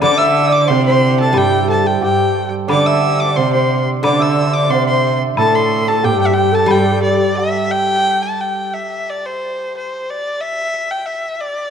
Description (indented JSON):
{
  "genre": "chinese traditional, Chinese chamber ensemble",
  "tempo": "90 BPM",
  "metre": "2/4",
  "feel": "rubato",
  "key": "G zhi mode",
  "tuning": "A4 = 438 Hz",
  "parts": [
    { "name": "clear erhu", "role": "melody", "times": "0.0-11.7 s", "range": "C5 to E6", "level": "-18 LUFS", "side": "left 1 dB", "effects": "none" },
    { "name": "breathy bright low xiao", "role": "second line", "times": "0.0-7.4 s", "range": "G4 to E5", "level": "-19 LUFS", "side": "left 7 dB", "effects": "none" },
    { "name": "clear cello", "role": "second line", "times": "0.0-7.3 s", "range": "G2 to D3", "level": "-18 LUFS", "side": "right 5 dB", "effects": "none" },
    { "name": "hammered dulcimer", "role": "second line", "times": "0.0-9.8 s", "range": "D4 to E5", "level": "-21 LUFS", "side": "right 4 dB", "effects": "none" },
    { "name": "steel-string zither", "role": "accompaniment", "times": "0.0-8.7 s", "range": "D3 to G3", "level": "-22 LUFS", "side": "equal", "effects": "none" },
    { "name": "woodblock", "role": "percussion", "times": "0.0-7.5 s", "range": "none", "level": "-27 LUFS", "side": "left 3 dB", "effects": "none" }
  ],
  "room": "moderate concert hall reverb, RT60 1.9 s",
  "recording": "dark, warm production",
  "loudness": "-13 LUFS",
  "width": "side -7 dB against mid",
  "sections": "0.0-8.1 A section; 8.1-11.7 B section",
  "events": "none",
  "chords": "none",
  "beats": "| 0.02 0.68 | 1.35 2.02 | 2.70 3.38 | 4.05 4.72 | 5.38 6.03 | 6.69 7.37 | 8.07 8.76 | 9.44 10.10 | 10.76 11.41"
}